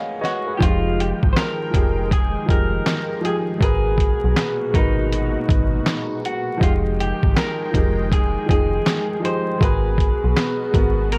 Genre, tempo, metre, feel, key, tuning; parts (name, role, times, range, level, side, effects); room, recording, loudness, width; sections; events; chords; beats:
lo-fi hip hop; 80 BPM; 4/4; swing 65% on 16ths; F minor; A4 = 440 Hz
warm upright piano; accompaniment; 0.0-11.2 s; F3 to Bb5; -28 LUFS; equal; low-pass filter
electric guitar through a small old amp; melody; 0.2-11.2 s; Eb4 to C5; -27 LUFS; equal; spring reverb, low-pass filter
lo-fi sampler-style drum kit; drums; 0.2-11.2 s; handclaps, hi-hat, kick drum, snare drum; -22 LUFS; equal
lush unison pad; sustained chords; 0.6-11.2 s; Bb2 to G5; -33 LUFS; equal; chorus, phaser, low-pass filter
metallic FM bass; bass; 0.6-11.2 s; F1 to Cb2; -24 LUFS; equal
little or no reverb; vinyl crackle; -20 LUFS; mono
0.6-11.2 A section
0.0 Abm9; 0.6 Fm9; 3.6 Abm9; 6.6 Fm9; 9.6 Abm9
| 0.61 1.36 2.11 2.86 | 3.61 4.36 5.11 5.86 | 6.61 7.36 8.11 8.86 | 9.61 10.36 11.11